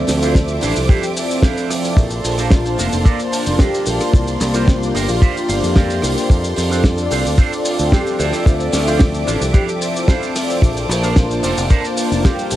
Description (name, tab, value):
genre	nu-disco, nu disco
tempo	111 BPM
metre	4/4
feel	straight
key	unclear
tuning	A4 = 440 Hz
part	warm analog pad	accompaniment	0.0-12.6 s	F3 to A5	-20 LUFS	equal	chorus, sidechain pumping, cassette tape, tape echo
part	rich symphonic string section	sustained chords	0.0-12.6 s	Bb3 to D6	-28 LUFS	left 1 dB	sidechain pumping, cassette tape
part	fingered electric bass	bass	0.0-12.6 s	F1 to F2	-20 LUFS	equal	none
part	damped 70s drum kit	drums	0.1-12.6 s	hi-hat, rim click, shaker, snare drum	-22 LUFS	right 1 dB	studio reverb, cassette tape
part	wide unison lead	melody	0.2-12.6 s	D4 to G4	-26 LUFS	equal	cassette tape, tape echo
part	electric guitar with an envelope filter	riff	0.2-12.5 s	D4 to A5	-28 LUFS	right 9 dB	lush chorus, cassette tape, tape echo
part	kick drum	drums	0.4-12.4 s	none	-12 LUFS	equal	studio reverb, cassette tape
room	moderate small room reverb, RT60 0.6 s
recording	home recording on cassette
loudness	-14 LUFS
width	side -14 dB against mid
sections	0.0-12.6 A section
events	clean electric guitar fill 4.7-6.3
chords	0.0 Dm9; 2.0 Bbmaj9; 4.1 C9sus4; 6.3 F6; 8.2 Dm9; 10.6 Bbmaj9